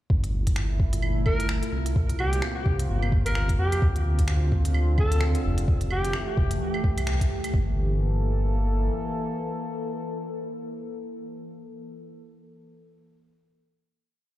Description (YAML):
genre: future garage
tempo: 129 BPM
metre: 4/4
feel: swing 60% on 16ths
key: G dorian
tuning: A4 = 442 Hz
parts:
  - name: warbly tape-like pad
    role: sustained chords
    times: 0.3-11.8 s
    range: Bb2 to A4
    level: -32 LUFS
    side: equal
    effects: chorus, built-in reverb, sidechain pumping
  - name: dark detuned saw bass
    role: bass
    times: 0.1-8.9 s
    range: F1 to F2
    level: -25 LUFS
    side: equal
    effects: tube saturation, sidechain pumping
  - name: electronic kick drum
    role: drums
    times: 0.1-7.7 s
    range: none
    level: -24 LUFS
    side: equal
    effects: studio reverb
  - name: organic electronic drum kit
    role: drums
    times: 0.2-7.5 s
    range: claves, finger snaps, hi-hat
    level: -36 LUFS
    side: right 2 dB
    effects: studio reverb
  - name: growling alto saxophone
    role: melody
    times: 1.3-6.2 s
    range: G4 to Bb4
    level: -32 LUFS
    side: equal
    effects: ping-pong delay
room: light reverb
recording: played on a big sound system in a bare room, large studio reverb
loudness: -23 LUFS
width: side -14 dB against mid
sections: 0.1-7.5 groove; 7.5-11.3 final chord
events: band accent 7.1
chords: 0.1 Gm69; 2.0 C7sus4; 3.8 Dm7; 5.7 Fmaj9; 7.5 Gm69